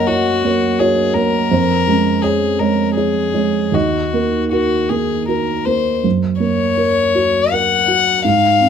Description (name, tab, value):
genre	neoclassical piano and strings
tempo	80 BPM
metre	3/4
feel	uneven beats, rubato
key	unclear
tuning	A4 = 441 Hz
part	rich violin	melody	0.0-8.7 s	Gb4 to Gb5	-17 LUFS	left 6 dB	none
part	felt-muted upright piano	accompaniment	0.0-8.7 s	Eb2 to Gb5	-16 LUFS	right 3 dB	none
room	wet studio reverb, RT60 0.6 s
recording	none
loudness	-13 LUFS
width	side -8 dB against mid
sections	0.0-6.0 A section; 6.0-8.7 B section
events	none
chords	0.0 Gb; 1.5 Db/F; 3.7 Ebm; 6.0 Gb